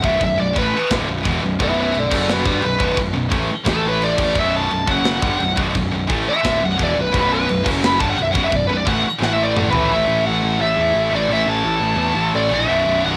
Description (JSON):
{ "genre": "heavy metal", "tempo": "173 BPM", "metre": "4/4", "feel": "straight", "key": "unclear", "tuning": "A4 = 440 Hz", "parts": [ { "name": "high-gain lead guitar", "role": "melody", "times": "0.0-13.2 s", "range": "F#4 to B5", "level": "-22 LUFS", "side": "equal", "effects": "distortion, cassette tape" }, { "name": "distorted electric guitar", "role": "riff", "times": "0.0-13.2 s", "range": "B1 to A3", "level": "-32 LUFS", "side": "equal", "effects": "none" }, { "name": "heavy high-gain guitar", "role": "riff", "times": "0.0-13.2 s", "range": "B1 to A3", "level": "-25 LUFS", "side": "equal", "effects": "distortion, cassette tape" }, { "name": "scooped high-gain guitar", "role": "riff", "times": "0.0-13.2 s", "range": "B1 to A4", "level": "-31 LUFS", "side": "equal", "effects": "none" }, { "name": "fuzz picked electric bass", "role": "bass", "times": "0.0-13.2 s", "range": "B0 to E2", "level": "-27 LUFS", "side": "equal", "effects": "overdrive" }, { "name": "tight metal drum kit", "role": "drums", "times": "0.0-9.8 s", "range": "crash cymbal, kick drum, snare drum, toms", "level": "-26 LUFS", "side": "equal", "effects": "none" } ], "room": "light reverb", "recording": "home recording on cassette", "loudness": "-18 LUFS", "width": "mono", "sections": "0.0-9.9 A section; 9.9-13.2 B section", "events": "lead electric guitar solo 0.0-9.9; drum fill 9.2-9.9", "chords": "0.0 Bm; 2.1 F#5; 2.5 Bm; 3.7 A5; 4.2 B5; 4.9 F#5; 5.2 Bm; 7.7 F#5; 8.0 Bm; 9.2 A5" }